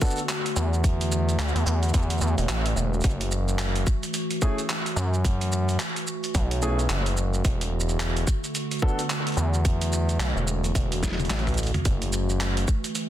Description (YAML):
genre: glitch hop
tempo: 109 BPM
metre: 4/4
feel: swing 60% on 16ths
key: unclear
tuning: A4 = 440 Hz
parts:
  - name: warbly tape-like pad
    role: sustained chords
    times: 0.0-13.1 s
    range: D3 to F#4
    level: -31 LUFS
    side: right 1 dB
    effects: chorus, built-in reverb, sidechain pumping
  - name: dark grand piano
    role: stabs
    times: 0.0-0.2, 4.4-9.0 s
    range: A3 to A4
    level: -32 LUFS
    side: left 1 dB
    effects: sidechain pumping, ping-pong delay
  - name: boom bap sampler-style drum kit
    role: drums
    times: 0.0-13.1 s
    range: handclaps, hi-hat, rim click, shaker, snare drum, toms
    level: -30 LUFS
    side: right 1 dB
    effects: none
  - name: electronic kick drum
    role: drums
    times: 0.0-12.8 s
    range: none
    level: -24 LUFS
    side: equal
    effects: none
  - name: gritty driven synth bass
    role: bass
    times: 0.6-12.7 s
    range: E1 to F#2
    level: -24 LUFS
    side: equal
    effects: tube saturation
room: digital ambience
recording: dense, heavily limited modern master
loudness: -23 LUFS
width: side -12 dB against mid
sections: 0.0-13.1 A section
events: drum fill 11.0-11.8; kick drops out 11.3-11.8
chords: 0.0 E9sus4; 3.0 F#m7; 7.4 E9sus4; 11.8 F#m7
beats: 0.29 | 0.84 1.39 1.94 2.49 | 3.04 3.59 4.14 4.69 | 5.24 5.79 6.34 6.89 | 7.45 8.00 8.55 9.10 | 9.65 10.20 10.75 11.30 | 11.85 12.40 12.95